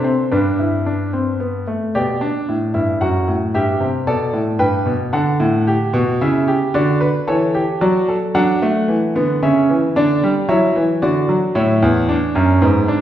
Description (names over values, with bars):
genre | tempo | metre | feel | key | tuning
classical, baroque-style 3-part fugue for grand piano | 112 BPM | 3/4 | straight | G major, D major from 8.4 s | A4 = 440 Hz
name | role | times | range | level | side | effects
warm concert grand piano | solo | 0.0-13.0 s | E2 to G5 | -14 LUFS | equal | none
room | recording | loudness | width
wet recital hall reverb, RT60 1.5 s | heard from further back in the room | -14 LUFS | side -11 dB against mid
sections
0.0-1.9 A section; 1.9-8.4 B section; 8.4-13.0 C section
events
none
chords
0.3 G; 1.9 G/B; 3.0 F#m; 3.5 G; 5.1 D; 6.2 C#dim; 6.7 D; 7.8 D/F#; 9.4 C#m; 10.0 D; 11.6 A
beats
| 0.31 0.85 1.40 | 1.94 2.48 3.01 | 3.55 4.08 4.61 | 5.14 5.67 6.21 | 6.74 7.28 7.81 | 8.35 8.89 9.42 | 9.96 10.49 11.02 | 11.56 12.09 12.62